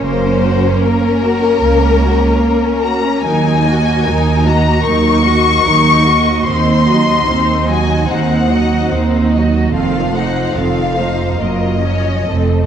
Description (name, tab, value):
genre	classical, slow romantic movement for string orchestra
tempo	74 BPM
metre	4/4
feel	uneven beats, rubato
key	unclear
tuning	A4 = 440 Hz
part	warm symphonic violin section	melody	0.0-12.7 s	Bb4 to Db6	-16 LUFS	left 5 dB	none
part	warm symphonic violin section	second line	0.0-12.7 s	Bb3 to Eb5	-19 LUFS	left 2 dB	none
part	rich symphonic viola section	accompaniment	0.0-12.7 s	Eb3 to Gb4	-19 LUFS	right 2 dB	none
part	rich symphonic cello section	bass	0.0-12.7 s	Db2 to Gb2	-17 LUFS	right 3 dB	none
part	rich symphonic double bass section	bass	0.0-12.7 s	F1 to Eb2	-18 LUFS	right 3 dB	none
room	wet concert hall reverb, RT60 1.8 s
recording	dark, warm production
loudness	-11 LUFS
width	side -8 dB against mid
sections	0.0-12.7 A section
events	none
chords	0.0 Gb; 3.2 Ebm; 6.5 Cdim/Eb; 9.7 F7; 11.4 Gbmaj7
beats	| 0.03 0.82 1.61 2.41 | 3.24 4.06 4.84 5.64 | 6.46 7.28 8.10 8.91 | 9.73 10.56 11.39 12.28